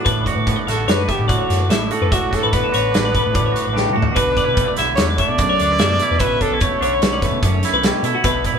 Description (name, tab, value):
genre	math rock and midwest emo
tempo	147 BPM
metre	5/4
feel	straight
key	D major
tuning	A4 = 440 Hz
part	twangy electric guitar	accompaniment	0.0-8.6 s	F#2 to F#4	-23 LUFS	right 6 dB	none
part	twelve-string electric guitar	arpeggios	0.0-8.6 s	F#4 to E5	-22 LUFS	left 6 dB	none
part	hollow-body short-scale picked electric bass	bass	0.1-8.6 s	A1 to B2	-23 LUFS	equal	none
part	loose indie drum kit	drums	0.1-8.5 s	hi-hat, kick drum, snare drum, toms	-20 LUFS	equal	none
part	warm trumpet	melody	0.7-7.4 s	E4 to D5	-21 LUFS	equal	none
room	moderate studio reverb, RT60 0.8 s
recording	band playing live in one room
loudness	-15 LUFS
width	side -7 dB against mid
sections	0.0-8.6 A section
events	drum fill 3.8-4.2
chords	0.1 D69/A